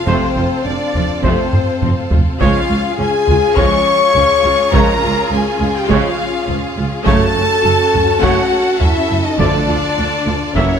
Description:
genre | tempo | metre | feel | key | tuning
cinematic, epic orchestral film score | 103 BPM | 4/4 | straight | unclear | A4 = 440 Hz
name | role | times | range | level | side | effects
rich symphonic violin section | melody | 0.0-10.8 s | C5 to C#6 | -24 LUFS | left 1 dB | none
mellow hollow silver concert flute | second line | 0.0-10.8 s | C5 to C#6 | -23 LUFS | left 2 dB | none
warm symphonic violin section | second line | 0.0-10.8 s | C5 to C#6 | -24 LUFS | equal | none
mellow French horn section | sustained chords | 0.0-10.8 s | C4 to C#5 | -18 LUFS | left 4 dB | none
rich symphonic string section | sustained chords | 0.0-10.8 s | C4 to A5 | -23 LUFS | left 1 dB | none
warm symphonic viola section | accompaniment | 0.1-10.8 s | C3 to F#4 | -23 LUFS | equal | none
clear trombone section | sustained chords | 0.1-10.8 s | E#3 to A#3 | -27 LUFS | right 4 dB | none
dark trumpet | stabs | 0.1-10.8 s | C5 to E5 | -24 LUFS | right 4 dB | none
rich studio double bass section | bass | 0.1-10.6 s | F1 to D2 | -22 LUFS | right 4 dB | none
warm symphonic cello section | bass | 0.1-10.6 s | C#2 to F#2 | -22 LUFS | right 3 dB | none
taiko ensemble | drums | 0.1-10.8 s | none | -19 LUFS | equal | none
timpani | percussion | 9.4-10.2 s | D3 | -23 LUFS | right 1 dB | none
room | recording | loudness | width
moderate scoring stage reverb, RT60 1.6 s | none | -12 LUFS | side -7 dB against mid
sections
0.0-10.8 A section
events
drum fill 1.5-2.4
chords
0.0 F; 2.4 C#; 7.1 F#m; 9.4 Dm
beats
| 0.08 0.66 1.25 1.83 | 2.41 2.99 3.58 4.16 | 4.74 5.32 5.91 6.49 | 7.07 7.65 8.24 8.82 | 9.40 9.98 10.57

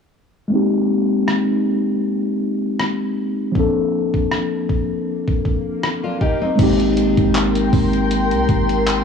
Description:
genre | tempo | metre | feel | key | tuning
contemporary R&B | 79 BPM | 4/4 | swing 54% on 16ths | unclear | A4 = 439 Hz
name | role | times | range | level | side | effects
mellow tine electric piano | accompaniment | 0.5-9.0 s | F3 to A4 | -18 LUFS | left 1 dB | medium stereo tremolo, low-pass filter, cassette tape
detuned 8-bit digital drum machine | drums | 1.3-9.0 s | crash cymbal, handclaps, hi-hat, kick drum, rim click | -21 LUFS | equal | cassette tape
swell | sound effects | 5.0-6.6 s | none | -33 LUFS | right 1 dB | none
nylon-string guitar | arpeggios | 6.0-6.8 s | C4 to G4 | -23 LUFS | left 3 dB | low-pass filter, cassette tape, tape echo
glassy FM pad | sustained chords | 7.2-9.0 s | Bb4 to C6 | -22 LUFS | left 2 dB | ensemble chorus, built-in reverb, cassette tape
clean 808-style bass | bass | 6.6-9.0 s | Ab1 to C2 | -22 LUFS | equal | none
room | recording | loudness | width
light reverb, digital ambience | home recording on cassette, small room ambience | -16 LUFS | side -6 dB against mid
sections
0.5-6.6 A section; 6.6-9.0 B section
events
filter sweep 0.5-6.6; swell 5.0-6.6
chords
0.5 Abmaj9; 3.6 Bbmaj9; 6.2 N.C.; 6.6 Abmaj9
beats
| 0.52 1.27 2.03 2.79 | 3.55 4.31 5.07 5.83 | 6.59 7.35 8.11 8.87

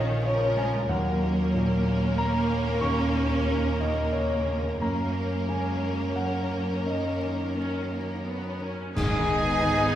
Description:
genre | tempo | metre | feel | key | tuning
cinematic, emotional film score for orchestra | 84-95 BPM | 3/4 | rubato | unclear | A4 = 440 Hz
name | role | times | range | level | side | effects
rich studio violin section | melody | 0.0-10.0 s | A#4 to G#5 | -34 LUFS | left 2 dB | none
rich studio violin section | second line | 0.0-10.0 s | C#4 to G#4 | -35 LUFS | equal | none
clear studio viola section | accompaniment | 0.0-10.0 s | D#3 to D#4 | -33 LUFS | right 3 dB | none
dark baby grand piano | accompaniment | 0.0-10.0 s | D#2 to C#6 | -29 LUFS | left 1 dB | none
clear studio double bass section | bass | 0.0-10.0 s | G#1 to F#2 | -32 LUFS | right 1 dB | none
rich studio cello section | bass | 0.0-10.0 s | G#2 to C#4 | -31 LUFS | right 1 dB | none
cymbal swell, clash cymbals and concert bass drum | percussion | 4.8-10.0 s | none | -32 LUFS | equal | none
hollow concert flute | second line | 9.0-10.0 s | D#5 | -32 LUFS | left 2 dB | none
warm oboe | second line | 9.0-10.0 s | G#4 | -28 LUFS | right 2 dB | none
dark French horn section | sustained chords | 9.0-10.0 s | B3 to D#4 | -34 LUFS | equal | none
timpani | percussion | 9.0-9.9 s | G#2 | -35 LUFS | equal | none
room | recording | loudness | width
wet recital hall reverb, RT60 1.4 s | recorded in a church or concert hall, vinyl crackle | -24 LUFS | side -11 dB against mid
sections
0.0-9.0 A section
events
band accent 9.0-9.6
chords
0.0 A#m; 0.9 D#m7; 4.8 F#6; 9.0 G#m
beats
0.24 | 0.89 1.54 2.17 | 2.81 3.47 4.13 | 4.82 5.49 6.16 | 6.86 7.57 8.27 | 8.97 9.64

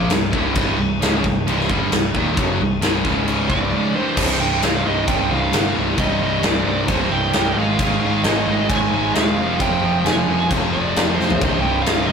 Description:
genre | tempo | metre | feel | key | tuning
heavy metal | 133 BPM | 4/4 | straight | C minor | A4 = 441 Hz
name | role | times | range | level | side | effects
distorted electric guitar | riff | 0.0-12.1 s | C2 to Bb3 | -22 LUFS | right 3 dB | distortion
high-gain distorted guitar | riff | 0.0-12.1 s | C2 to Ab3 | -26 LUFS | left 6 dB | distortion
tight distorted guitar | riff | 0.0-12.1 s | C2 to Ab4 | -26 LUFS | equal | distortion
overdriven picked electric bass | bass | 0.0-12.1 s | C1 to Ab1 | -26 LUFS | left 1 dB | none
big rock drum kit | drums | 0.1-12.0 s | crash cymbal, kick drum, snare drum, toms | -20 LUFS | left 1 dB | none
high-gain lead guitar | melody | 3.5-12.1 s | C5 to Ab5 | -24 LUFS | right 5 dB | distortion
room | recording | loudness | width
moderate studio reverb, RT60 0.6 s | rough rehearsal-room recording, tube saturation | -16 LUFS | side -6 dB against mid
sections
0.0-4.2 A section; 4.2-12.1 B section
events
drum fill 11.2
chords
0.0 Cm; 3.1 Db5; 3.5 C5; 4.2 Cm; 7.6 Ab; 9.4 Fm; 11.4 Cm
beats
0.11 | 0.56 1.01 1.47 1.92 | 2.37 2.83 3.28 3.73 | 4.18 4.63 5.09 5.54 | 5.99 6.44 6.89 7.35 | 7.80 8.25 8.70 9.16 | 9.61 10.06 10.51 10.96 | 11.41 11.87

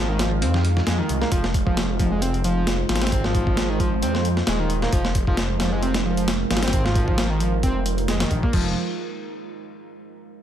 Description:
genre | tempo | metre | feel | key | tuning
breakbeat, breaks | 133 BPM | 4/4 | swing 54% on 16ths | F minor | A4 = 442 Hz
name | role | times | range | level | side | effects
deep dark ambient pad | sustained chords | 0.0-8.7 s | Ab3 to F5 | -28 LUFS | right 4 dB | chorus, built-in reverb, vintage 12-bit sampler grit, sidechain pumping
overdriven synth lead | riff | 0.0-8.7 s | Eb3 to C4 | -26 LUFS | equal | distortion, vintage 12-bit sampler grit, tape echo
phased detuned saw bass | bass | 0.0-8.7 s | Eb1 to F2 | -24 LUFS | equal | phaser
breakbeat sampler-style drum kit | drums | 0.2-8.6 s | crash cymbal, hi-hat, kick drum, snare drum | -24 LUFS | equal | studio ambience
room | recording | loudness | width
digital ambience | none | -19 LUFS | side -10 dB against mid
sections
0.0-8.5 A section; 8.5-10.3 B section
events
drop 0.0-8.5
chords
0.0 Fm7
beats
0.42 0.87 | 1.32 1.77 2.22 2.67 | 3.12 3.57 4.03 4.48 | 4.93 5.38 5.83 6.28 | 6.73 7.18 7.63 8.09 | 8.54

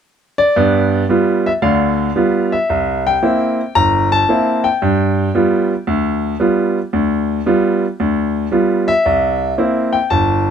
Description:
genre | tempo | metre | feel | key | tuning
solo jazz | 113 BPM | 4/4 | swing 69% on 8ths | G mixolydian | A4 = 438 Hz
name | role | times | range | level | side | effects
clear grand piano | solo | 0.4-10.5 s | G1 to Bb5 | -13 LUFS | equal | none
room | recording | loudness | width
light reverb | close, detailed microphones | -13 LUFS | side -8 dB against mid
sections
0.6-10.5 A section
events
none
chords
0.0 N.C.; 0.6 G7; 2.7 C7; 4.8 G7; 9.0 C7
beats
0.02 | 0.55 1.08 1.62 2.15 | 2.68 3.21 3.74 4.27 | 4.80 5.33 5.86 6.39 | 6.92 7.45 7.98 8.51 | 9.04 9.57 10.10

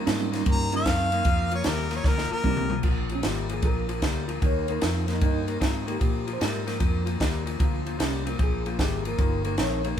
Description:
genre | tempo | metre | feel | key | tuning
electric blues shuffle | 152 BPM | 4/4 | swing 66% on 8ths | unclear | A4 = 439 Hz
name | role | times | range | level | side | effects
mellow reed electric piano | accompaniment | 0.0-10.0 s | G3 to Db5 | -32 LUFS | right 4 dB | fast tremolo
electric guitar through a small old amp | riff | 0.0-10.0 s | Bb2 to C4 | -31 LUFS | left 4 dB | none
vintage muted fingered electric bass | bass | 0.1-10.0 s | G1 to Bb2 | -30 LUFS | equal | none
compact cocktail drum kit | drums | 0.1-10.0 s | crash cymbal, kick drum, ride cymbal, snare drum, toms | -26 LUFS | equal | none
clear harmonica | melody | 0.5-2.8 s | Bb4 to Bb5 | -28 LUFS | equal | none
room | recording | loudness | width
moderate large studio reverb, RT60 1.1 s | band playing live in one room | -23 LUFS | side -9 dB against mid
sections
0.0-2.8 A section; 2.8-10.0 A section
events
harmonica solo 0.0-2.8; drum fill 2.1-2.8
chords
0.0 Eb7; 1.3 Bb7; 4.4 Eb; 6.0 Bb7; 9.2 Eb7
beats
0.08 0.47 0.87 | 1.26 1.66 2.06 2.45 | 2.85 3.24 3.64 4.04 | 4.43 4.83 5.22 5.62 | 6.02 6.41 6.81 7.21 | 7.60 8.00 8.39 8.79 | 9.19 9.58 9.98

